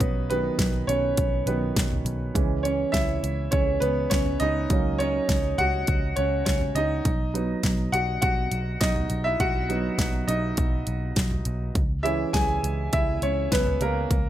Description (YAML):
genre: piano-driven pop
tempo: 102 BPM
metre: 4/4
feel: straight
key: B major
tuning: A4 = 440 Hz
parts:
  - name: warm upright piano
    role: accompaniment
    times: 0.0-14.3 s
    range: D#3 to G#5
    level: -25 LUFS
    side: right 1 dB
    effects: none
  - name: vintage muted picked electric bass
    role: bass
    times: 0.0-14.3 s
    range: B1 to C#2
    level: -28 LUFS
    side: equal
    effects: none
  - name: pop drum kit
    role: drums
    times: 0.0-14.2 s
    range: handclaps, hi-hat, kick drum, snare drum, toms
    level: -26 LUFS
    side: equal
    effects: none
room: light reverb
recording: none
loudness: -22 LUFS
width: side -12 dB against mid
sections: 0.0-14.3 A section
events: upright piano solo 0.0-14.3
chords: 0.0 B; 2.4 C#m; 4.7 F#/C#; 7.1 B; 11.8 C#m